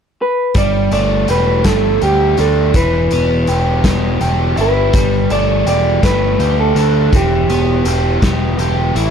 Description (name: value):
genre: indie rock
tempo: 55 BPM (dotted quarters)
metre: 6/8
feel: straight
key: G major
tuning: A4 = 440 Hz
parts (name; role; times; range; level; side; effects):
- electric guitar through a small old amp; melody; 0.2-8.6 s; G4 to D5; -16 LUFS; right 2 dB; slapback echo
- raw garage drum kit; drums; 0.5-9.1 s; hi-hat, kick drum, snare drum; -19 LUFS; equal; none
- biting overdriven guitar; riff; 0.6-9.1 s; E3 to G4; -18 LUFS; equal; none
- growling picked electric bass; bass; 0.6-9.1 s; E1 to D2; -16 LUFS; equal; overdrive
room: little or no reverb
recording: dry, close 1970s-style studio recording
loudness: -12 LUFS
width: side -7 dB against mid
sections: 0.5-9.1 A section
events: none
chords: 0.0 N.C.; 0.5 Gsus2; 2.7 Em; 4.9 Gsus2; 7.1 Em